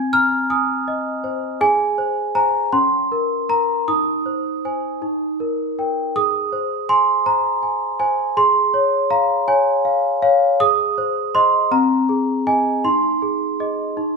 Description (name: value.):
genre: classical, lullaby for celesta.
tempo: 54 BPM (dotted quarters).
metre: 6/8.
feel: straight.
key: Ab major.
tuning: A4 = 441 Hz.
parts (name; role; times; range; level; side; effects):
large celesta; solo; 0.0-14.2 s; C4 to Ab6; -16 LUFS; equal; none.
room: moderate large studio reverb, RT60 1.1 s.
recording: band playing live in one room.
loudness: -16 LUFS.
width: side -4 dB against mid.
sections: 0.0-6.2 A section; 6.2-14.2 B section.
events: none.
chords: 0.0 Ab/C; 1.6 Ab; 2.7 Bbm/Db; 3.9 Ab/Eb; 5.0 Eb; 6.2 Ab; 8.4 Db/Ab; 10.6 Ab; 11.7 Ab/C; 12.8 Ab/Eb.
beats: 0.50 | 1.61 2.73 | 3.89 5.03 | 6.16 7.26 | 8.37 9.47 | 10.59 11.71 | 12.83 13.96.